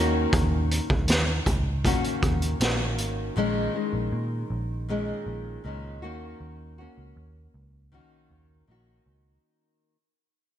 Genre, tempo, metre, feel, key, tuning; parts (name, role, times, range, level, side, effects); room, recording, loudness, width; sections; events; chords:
indie pop, bedroom pop; 79 BPM; 4/4; straight; A4 = 440 Hz
nylon-string guitar; accompaniment; 0.0-10.0 s; Bb2 to Gb4; -29 LUFS; left 2 dB; wide subtle chorus, vibrato effect
vintage muted picked electric bass; bass; 0.0-9.4 s; Ab1 to Bb2; -29 LUFS; right 1 dB
raw garage drum kit; drums; 0.3-3.2 s; hi-hat, kick drum, snare drum; -25 LUFS; right 1 dB
light reverb, studio reverb; bright 1980s-style digital production; -24 LUFS; side -10 dB against mid
0.0-9.4 A section
fade-out 0.0-9.4
0.0 Ebm7; 3.4 Bbm7; 6.0 Ebm7